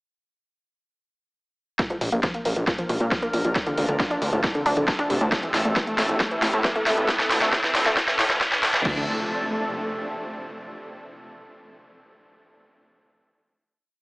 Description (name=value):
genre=uplifting trance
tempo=136 BPM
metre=4/4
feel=straight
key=D minor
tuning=A4 = 439 Hz
part: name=shimmering ambient pad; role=sustained chords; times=2.5-9.1 s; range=C3 to Bb4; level=-29 LUFS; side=equal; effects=chorus, built-in reverb, sidechain pumping
part: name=wide unison pluck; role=arpeggios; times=1.8-9.1 s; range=D2 to D4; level=-27 LUFS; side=equal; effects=sidechain pumping, digital delay
part: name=big-room dance drum kit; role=drums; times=1.8-8.9 s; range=congas, crash cymbal, hi-hat, snare drum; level=-26 LUFS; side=equal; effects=overdrive, high-pass filter on snare, studio reverb, sidechain pumping on hats, high-pass filter on hats, sidechain pumping on perc, high-pass filter on perc, sidechain pumping on cymbals, high-pass filter on cymbals
part: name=electronic kick drum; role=drums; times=1.8-8.9 s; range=none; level=-26 LUFS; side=equal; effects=overdrive, studio reverb
part: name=riser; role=sound effects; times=4.8-8.9 s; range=none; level=-31 LUFS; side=equal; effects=none
part: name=gritty driven synth bass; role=bass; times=2.0-9.1 s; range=D1 to Bb2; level=-27 LUFS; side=equal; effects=sidechain pumping
room=moderate huge ambient reverb, RT60 6.6 s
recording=high-pass filter, AM radio sound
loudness=-21 LUFS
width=side -26 dB against mid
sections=1.8-8.9 build; 8.9-10.6 final chord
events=build-up 1.8-8.9; drum fill 1.8-8.9; filter sweep on synth arpeggio sound 1.8-8.9; filter sweep 1.8-8.9; riser 4.8-8.9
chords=1.8 Bbadd9; 3.6 Dm7; 5.3 Am; 7.1 Dm7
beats=| 1.79 2.23 2.67 3.12 | 3.56 4.00 4.44 4.88 | 5.32 5.76 6.20 6.64 | 7.09 7.53 7.97 8.41 | 8.85